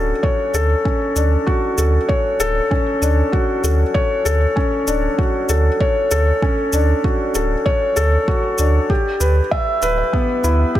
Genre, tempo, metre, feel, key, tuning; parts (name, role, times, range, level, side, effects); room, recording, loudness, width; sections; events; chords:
piano and strings electronica; 97 BPM; 4/4; straight; D major; A4 = 443 Hz
felt-muted upright piano; riff; 0.0-10.8 s; B3 to E5; -18 LUFS; left 1 dB; digital delay
warm sub bass; bass; 0.0-10.7 s; D1 to D2; -16 LUFS; right 1 dB; tube saturation, sidechain pumping
electronic kick drum; drums; 0.2-10.8 s; -20 LUFS; right 1 dB
shaker; drums; 0.5-10.6 s; -26 LUFS; equal
light reverb; -15 LUFS; side -13 dB against mid
0.0-10.8 A section
0.0 Dmaj7; 8.9 Em/D